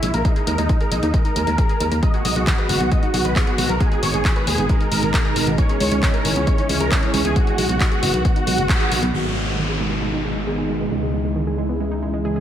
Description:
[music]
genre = uplifting trance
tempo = 135 BPM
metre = 4/4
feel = straight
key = G# minor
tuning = A4 = 440 Hz
[part]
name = big supersaw lead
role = melody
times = 0.0-9.1 s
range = C#4 to D#5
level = -23 LUFS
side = equal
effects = analog chorus, sidechain pumping, low-pass filter, tape echo
[part]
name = analog pluck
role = arpeggios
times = 0.0-12.4 s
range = D#3 to G#4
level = -28 LUFS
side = right 4 dB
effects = chorus, sidechain pumping, tape echo
[part]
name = solid FM bass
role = bass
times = 0.0-12.4 s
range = F#1 to D#2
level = -23 LUFS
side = equal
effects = sidechain pumping
[part]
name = punchy analog drum machine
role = drums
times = 0.0-9.1 s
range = handclaps, hi-hat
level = -25 LUFS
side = left 2 dB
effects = none
[part]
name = electronic kick drum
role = drums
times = 0.2-8.8 s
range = none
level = -19 LUFS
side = equal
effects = none
[part]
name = downlifter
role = sound effects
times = 9.1-12.4 s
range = none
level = -28 LUFS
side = equal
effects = none
[sound]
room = moderate lush hall reverb, RT60 1.8 s, digital ambience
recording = dreamy mix soaked in reverb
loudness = -17 LUFS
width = side -10 dB against mid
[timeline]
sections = 0.0-9.1 A section; 9.1-12.4 B section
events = band accent 8.7; filter sweep on synth pluck 9.1-12.4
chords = 0.2 D#5; 2.0 B; 3.8 G#m; 5.6 C#m; 7.4 B; 9.1 G#m; 10.9 C#m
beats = | 0.25 0.69 1.14 1.58 | 2.03 2.47 2.92 3.36 | 3.81 4.25 4.69 5.14 | 5.58 6.03 6.47 6.92 | 7.36 7.80 8.25 8.69 | 9.14 9.58 10.03 10.47 | 10.92 11.36 11.80 12.25

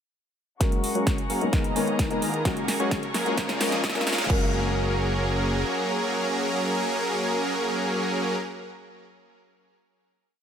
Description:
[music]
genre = EDM, festival progressive house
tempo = 130 BPM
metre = 4/4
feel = straight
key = F# major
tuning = A4 = 440 Hz
[part]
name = dark concert grand piano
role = accompaniment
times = 0.6-8.4 s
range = G#3 to A#4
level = -30 LUFS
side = left 3 dB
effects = sidechain pumping, digital delay
[part]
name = dark chamber string section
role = sustained chords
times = 0.6-8.4 s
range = F#3 to C#6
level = -33 LUFS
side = left 1 dB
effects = sidechain pumping, low-pass filter
[part]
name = supersaw chords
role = riff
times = 0.6-8.4 s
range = D#3 to D#5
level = -27 LUFS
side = right 1 dB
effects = sidechain pumping, low-pass filter, digital delay
[part]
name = fat analog bass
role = bass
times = 0.6-5.6 s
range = F#1 to G#2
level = -33 LUFS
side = equal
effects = none
[part]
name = big-room dance drum kit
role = drums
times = 0.6-4.4 s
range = crash cymbal, hi-hat, snare drum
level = -30 LUFS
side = right 1 dB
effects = none
[part]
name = electronic kick drum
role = drums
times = 0.6-4.4 s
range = none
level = -26 LUFS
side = equal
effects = none
[part]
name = riser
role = sound effects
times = 2.1-4.3 s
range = none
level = -35 LUFS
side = right 1 dB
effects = none
[sound]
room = light reverb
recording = high-pass filter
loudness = -23 LUFS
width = side -8 dB against mid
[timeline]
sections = 0.6-4.3 build; 4.3-8.0 final chord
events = build-up 0.6-4.3; drum fill 0.6-4.3; filter sweep on supersaw synth 0.6-4.3; filter sweep 0.6-4.3; riser 2.1-4.3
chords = 0.6 F#add9; 1.5 G#madd9; 2.5 F#add9; 3.4 A#m7; 4.3 F#add9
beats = | 0.61 1.07 1.53 1.99 | 2.45 2.91 3.38 3.84 | 4.30 4.76 5.22 5.68 | 6.14 6.61 7.07 7.53

